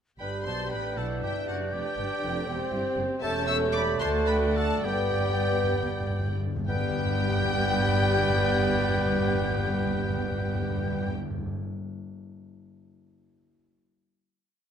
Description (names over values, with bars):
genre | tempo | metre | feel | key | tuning
quick classical-period movement for symphony orchestra | 62-82 BPM (dotted quarters) | 6/8 | rubato | G major | A4 = 439 Hz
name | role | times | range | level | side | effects
rich studio violin section | melody | 0.2-11.1 s | F#5 to E6 | -34 LUFS | left 3 dB | none
clear oboe | second line | 0.2-11.1 s | F#4 to E5 | -38 LUFS | right 1 dB | none
concert flute | second line | 0.2-11.1 s | F#6 to G6 | -36 LUFS | left 2 dB | none
mellow clarinet | second line | 0.2-11.1 s | B4 to D5 | -36 LUFS | left 1 dB | none
warm studio violin section | second line | 0.2-11.1 s | G4 to C#6 | -38 LUFS | left 2 dB | none
mellow bassoon | accompaniment | 0.2-11.1 s | A3 to D4 | -34 LUFS | right 2 dB | none
rich studio viola section | accompaniment | 0.2-11.1 s | A3 to G4 | -35 LUFS | equal | none
rich studio double bass section | bass | 0.2-11.1 s | E1 to D2 | -34 LUFS | right 3 dB | none
warm studio cello section | bass | 0.2-11.1 s | D2 to B2 | -34 LUFS | right 2 dB | none
warm French horn section | sustained chords | 1.0-11.1 s | B3 to B4 | -34 LUFS | left 2 dB | none
timpani | percussion | 4.8-11.5 s | G2 | -31 LUFS | left 1 dB | none
room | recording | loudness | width
moderate recital hall reverb, RT60 1.5 s | none | -25 LUFS | side -8 dB against mid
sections
0.2-6.7 A section; 6.7-10.4 final chord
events
slowing down 2.5-6.7; timpani fill 4.8-6.7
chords
0.2 G; 1.7 G7; 2.5 C/E; 3.2 A7/E; 4.0 D; 4.8 G